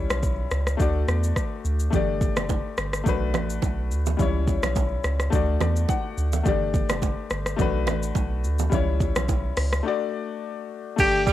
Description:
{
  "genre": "afrobeats",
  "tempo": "106 BPM",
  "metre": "4/4",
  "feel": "swing 55% on 16ths",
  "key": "unclear",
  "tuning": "A4 = 444 Hz",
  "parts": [
    { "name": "clear baby grand piano", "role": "accompaniment", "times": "0.0-11.3 s", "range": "G3 to F#5", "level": "-28 LUFS", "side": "left 8 dB", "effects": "cassette tape" },
    { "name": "round analog bass", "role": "bass", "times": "0.0-11.3 s", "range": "F#1 to E2", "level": "-25 LUFS", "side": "right 1 dB", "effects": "none" },
    { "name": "afro-pop drum kit", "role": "drums", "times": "0.1-11.3 s", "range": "crash cymbal, hi-hat, kick drum, rim click, shaker", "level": "-26 LUFS", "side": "equal", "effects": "cassette tape" },
    { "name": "congas and bongos", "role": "percussion", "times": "1.9-9.4 s", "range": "none", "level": "-31 LUFS", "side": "right 12 dB", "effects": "none" },
    { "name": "breathy alto saxophone", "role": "melody", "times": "11.0-11.2 s", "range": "G4", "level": "-19 LUFS", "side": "equal", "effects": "cassette tape" },
    { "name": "clear horn section", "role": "second line", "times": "11.3 s", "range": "G3 to G4", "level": "-22 LUFS", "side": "right 7 dB", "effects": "cassette tape" }
  ],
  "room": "small room ambience",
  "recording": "home recording on cassette",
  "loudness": "-22 LUFS",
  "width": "side -13 dB against mid",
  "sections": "0.0-1.9 A section; 1.9-11.0 B section",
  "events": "grand piano fill 5.3-6.5; break 9.9-11.0",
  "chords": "0.0 C#dim; 0.8 D; 1.9 Gsus2; 3.1 Bm7; 4.2 C#dim; 5.3 D; 6.5 Gsus2; 7.6 Bm7; 8.7 C#dim; 9.9 D"
}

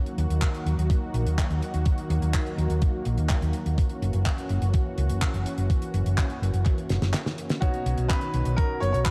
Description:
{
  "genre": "italo disco",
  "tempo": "125 BPM",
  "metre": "4/4",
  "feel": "straight",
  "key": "F# major",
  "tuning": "A4 = 440 Hz",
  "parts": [
    { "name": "lush unison pad", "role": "sustained chords", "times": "0.0-9.1 s", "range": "D#3 to F#4", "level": "-35 LUFS", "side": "equal", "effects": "chorus" },
    { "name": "damped 70s drum kit", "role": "drums", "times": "0.1-9.1 s", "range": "handclaps, hi-hat, snare drum", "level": "-35 LUFS", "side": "equal", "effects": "studio reverb" },
    { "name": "hollow-body short-scale fingered electric bass", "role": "bass", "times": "0.2-9.0 s", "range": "F#1 to D#2", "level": "-28 LUFS", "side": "equal", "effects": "none" },
    { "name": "electronic kick drum", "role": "drums", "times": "0.4-9.1 s", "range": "none", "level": "-27 LUFS", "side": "equal", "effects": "overdrive, studio reverb" },
    { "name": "clear grand piano", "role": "melody", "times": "7.6-9.1 s", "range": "F#4 to C#5", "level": "-32 LUFS", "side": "equal", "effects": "tape echo" },
    { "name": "warm electric grand piano", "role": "stabs", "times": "7.6-9.1 s", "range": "B2 to C#5", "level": "-39 LUFS", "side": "equal", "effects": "none" }
  ],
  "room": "light reverb",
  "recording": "dark, warm production",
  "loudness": "-26 LUFS",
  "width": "mono",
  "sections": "0.0-9.1 A section",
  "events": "drum fill 6.9-7.6; break 7.1-7.6",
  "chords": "0.0 D#m; 3.8 F#7; 7.6 Badd9"
}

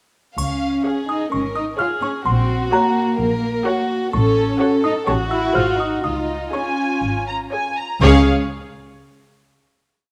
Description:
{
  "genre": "cinematic, playful, whimsical film cue",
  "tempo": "126 BPM",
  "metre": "4/4",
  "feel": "uneven beats",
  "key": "Db major",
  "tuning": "A4 = 440 Hz",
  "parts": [
    { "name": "music box", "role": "melody", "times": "0.4-8.3 s", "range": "Bb5 to F6", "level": "-27 LUFS", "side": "equal", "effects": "none" },
    { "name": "warm chamber violin section", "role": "second line", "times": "0.4-8.3 s", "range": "F4 to F5", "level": "-26 LUFS", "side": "equal", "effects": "none" },
    { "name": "dark studio cello section", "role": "bass", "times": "0.4-8.3 s", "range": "Bb3 to F4", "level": "-24 LUFS", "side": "equal", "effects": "none" },
    { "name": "warm studio double bass section", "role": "bass", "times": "0.4-8.3 s", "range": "Ab1 to Db2", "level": "-23 LUFS", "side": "equal", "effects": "none" },
    { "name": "triangle", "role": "percussion", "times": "0.4-1.3 s", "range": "none", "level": "-36 LUFS", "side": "equal", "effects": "none" },
    { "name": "dark studio violin section", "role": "melody", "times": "0.9-8.3 s", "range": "F5 to Bb5", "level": "-28 LUFS", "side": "equal", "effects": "none" },
    { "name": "warm studio viola section", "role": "accompaniment", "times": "0.9-8.3 s", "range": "Gb4 to Db5", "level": "-26 LUFS", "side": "equal", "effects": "none" }
  ],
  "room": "light reverb",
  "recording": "none",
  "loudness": "-19 LUFS",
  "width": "mono",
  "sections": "0.4-8.0 A section; 8.0-10.0 final chord",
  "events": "none",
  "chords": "0.4 Db; 2.3 Gb/Bb; 4.1 Gbm/A; 5.1 A7; 5.6 Ab7; 6.0 Db; 8.0 Db5"
}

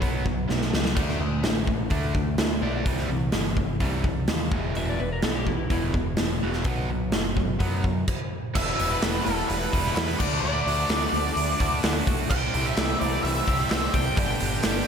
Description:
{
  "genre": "classic rock",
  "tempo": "127 BPM",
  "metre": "4/4",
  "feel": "straight",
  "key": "E minor",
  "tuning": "A4 = 439 Hz",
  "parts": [
    { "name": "cranked stack guitar", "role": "riff", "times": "0.0-14.9 s", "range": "E2 to G4", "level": "-29 LUFS", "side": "equal", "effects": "overdrive, slapback echo" },
    { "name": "growling picked electric bass", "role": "bass", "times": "0.0-14.8 s", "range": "E1 to F#2", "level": "-29 LUFS", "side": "equal", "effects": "overdrive" },
    { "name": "big rock drum kit", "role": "drums", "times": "0.0-14.7 s", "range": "crash cymbal, hi-hat, kick drum, snare drum", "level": "-26 LUFS", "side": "equal", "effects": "none" },
    { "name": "electric slide guitar", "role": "second line", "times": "4.8-5.9 s", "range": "E4 to E5", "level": "-33 LUFS", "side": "left 2 dB", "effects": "slapback echo, digital delay" },
    { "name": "octave-fuzz lead guitar", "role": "melody", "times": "8.6-14.9 s", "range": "A4 to G5", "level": "-28 LUFS", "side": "equal", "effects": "distortion" },
    { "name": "group handclap", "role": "percussion", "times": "9.0-14.7 s", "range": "none", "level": "-43 LUFS", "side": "left 6 dB", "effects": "none" }
  ],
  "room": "light reverb",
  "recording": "none",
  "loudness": "-22 LUFS",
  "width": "side -7 dB against mid",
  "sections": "0.0-8.6 A section; 8.6-14.9 B section",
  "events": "drum fill 0.5-1.0; stop 8.1-8.6",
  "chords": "0.0 B5; 1.0 D5; 2.9 C; 4.5 E5; 6.7 B5; 8.6 Em; 10.2 D; 12.3 C; 14.2 G"
}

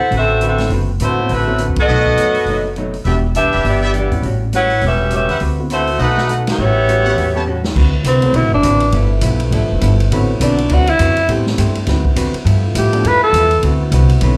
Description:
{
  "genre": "jazz, big band swing",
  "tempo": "204 BPM",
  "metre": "4/4",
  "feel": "swing 59% on 8ths",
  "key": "D mixolydian",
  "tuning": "A4 = 437 Hz",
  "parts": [
    { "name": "clear saxophone section", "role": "melody", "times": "0.0-7.4 s", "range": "A3 to F#5", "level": "-18 LUFS", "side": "equal", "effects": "plate reverb, slapback echo" },
    { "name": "hollow-body jazz guitar", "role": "accompaniment", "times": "0.0-14.4 s", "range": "G2 to C5", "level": "-25 LUFS", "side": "equal", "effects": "plate reverb, slapback echo" },
    { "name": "upright bass", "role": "bass", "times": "0.0-14.4 s", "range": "E1 to A2", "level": "-18 LUFS", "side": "equal", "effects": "none" },
    { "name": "swinging big-band drum kit", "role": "drums", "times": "0.1-14.3 s", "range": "crash cymbal, hi-hat, kick drum, ride cymbal, snare drum", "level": "-27 LUFS", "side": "equal", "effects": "none" },
    { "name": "warm concert grand piano", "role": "accompaniment", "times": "0.6-14.4 s", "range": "F3 to G4", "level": "-27 LUFS", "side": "equal", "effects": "plate reverb, slapback echo" },
    { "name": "brilliant trumpet section", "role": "stabs", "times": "1.9-7.4 s", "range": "F#4 to A5", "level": "-26 LUFS", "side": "equal", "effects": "plate reverb, slapback echo" },
    { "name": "warm trombone section", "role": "sustained chords", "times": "7.8-14.4 s", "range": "C3 to B4", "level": "-29 LUFS", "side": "equal", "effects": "plate reverb" },
    { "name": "growling alto saxophone", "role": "melody", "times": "8.1-13.6 s", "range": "C4 to B4", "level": "-16 LUFS", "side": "equal", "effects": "plate reverb, slapback echo" }
  ],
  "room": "light reverb",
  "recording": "live gig heard through the venue's PA, club reverb",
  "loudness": "-15 LUFS",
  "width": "mono",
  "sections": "0.0-7.8 A section; 7.8-14.4 B section",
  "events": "band accent 1.7, 6.4; drum fill 7.5; alto saxophone solo 7.8-14.4",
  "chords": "0.0 D13; 1.9 B7; 3.1 Em7; 4.2 A13; 5.4 D13; 6.0 B7; 6.6 A13; 7.8 D13; 8.9 G13; 10.1 D13; 11.3 Am7; 11.9 D13; 12.5 G13; 13.6 D13"
}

